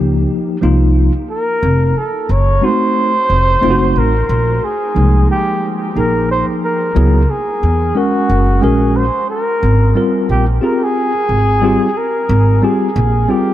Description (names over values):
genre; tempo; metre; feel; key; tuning
hip hop; 90 BPM; 4/4; swing 59% on 16ths; Ab major; A4 = 439 Hz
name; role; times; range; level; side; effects
tine electric piano; accompaniment; 0.0-13.5 s; F3 to Bb4; -17 LUFS; left 1 dB; overdrive, fast stereo tremolo
upright bass; bass; 0.0-13.2 s; F1 to Fb2; -13 LUFS; equal; none
breathy flugelhorn; melody; 1.3-13.5 s; Gb4 to Db5; -17 LUFS; right 1 dB; diffuse ambient delay
room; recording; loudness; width
light reverb, small room ambience; none; -12 LUFS; side -13 dB against mid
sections
0.0-13.5 A section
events
none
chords
0.0 Cm7; 1.6 F7b9; 4.3 Bb5; 7.0 Dbm7; 8.3 Gbadd9; 9.6 Abmaj9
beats
0.29 0.96 | 1.63 2.29 2.96 3.63 | 4.29 4.96 5.63 6.29 | 6.96 7.63 8.29 8.96 | 9.63 10.29 10.96 11.63 | 12.29 12.96